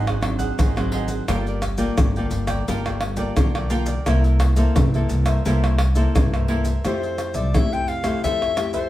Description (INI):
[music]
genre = samba and choro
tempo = 86 BPM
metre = 4/4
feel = straight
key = F major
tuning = A4 = 440 Hz
[part]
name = cavaquinho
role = accompaniment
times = 0.0-8.9 s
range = Eb4 to G5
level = -30 LUFS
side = right 2 dB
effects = none
[part]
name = nylon-string guitar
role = accompaniment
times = 0.0-8.9 s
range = G2 to A4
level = -26 LUFS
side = left 2 dB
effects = none
[part]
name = upright bass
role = bass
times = 0.0-8.8 s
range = G1 to F2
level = -22 LUFS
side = equal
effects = none
[part]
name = maracas, surdo, pandeiro and tamborim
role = percussion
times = 0.1-8.9 s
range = none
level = -23 LUFS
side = equal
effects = none
[part]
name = breathy soprano saxophone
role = melody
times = 6.9-8.9 s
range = C5 to G5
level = -25 LUFS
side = left 3 dB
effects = none
[sound]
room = moderate studio reverb, RT60 0.7 s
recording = heard from further back in the room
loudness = -18 LUFS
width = side -14 dB against mid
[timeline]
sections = 0.0-6.8 A section; 6.8-8.9 B section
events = none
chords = 0.0 Ab7#11; 1.3 Gm9; 4.1 C6; 6.8 Fmaj9